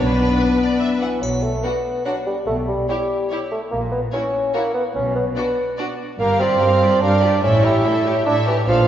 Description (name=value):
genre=cinematic, playful, whimsical film cue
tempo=145 BPM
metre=3/4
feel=straight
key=B minor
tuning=A4 = 440 Hz
part: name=buff-stop harpsichord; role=melody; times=0.0-1.0 s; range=B4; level=-34 LUFS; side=left 2 dB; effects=none
part: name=rich chamber violin section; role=second line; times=0.0-8.9 s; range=F#4 to B4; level=-29 LUFS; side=left 1 dB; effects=none
part: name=rich studio viola section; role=accompaniment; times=0.0-8.9 s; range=D4 to G4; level=-29 LUFS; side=right 2 dB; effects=none
part: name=mellow French horn section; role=sustained chords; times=0.0-1.0 s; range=B3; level=-20 LUFS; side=left 3 dB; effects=none
part: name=rich chamber double bass section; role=bass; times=0.0-8.9 s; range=G1 to B1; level=-26 LUFS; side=right 1 dB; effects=none
part: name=warm chamber cello section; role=bass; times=0.0-8.9 s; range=G2 to B2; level=-24 LUFS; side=right 1 dB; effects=none
part: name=rich symphonic violin section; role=melody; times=0.4-8.9 s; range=B4 to F#5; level=-28 LUFS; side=left 2 dB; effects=none
part: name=mellow bassoon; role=accompaniment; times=1.0-8.9 s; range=E3 to E4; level=-19 LUFS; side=right 1 dB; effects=none
part: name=triangle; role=percussion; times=1.2-2.0 s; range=none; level=-37 LUFS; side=left 1 dB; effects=none
room=wet scoring stage reverb, RT60 1.9 s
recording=recorded in a church or concert hall, nothing above 7.6 kHz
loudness=-17 LUFS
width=side -10 dB against mid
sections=0.0-1.2 A section; 1.2-8.9 B section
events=none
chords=0.0 Bm; 2.5 C#m7b5/B (rootless); 3.7 F#7/A# (rootless); 5.0 Bm; 6.2 Gm7; 7.4 A7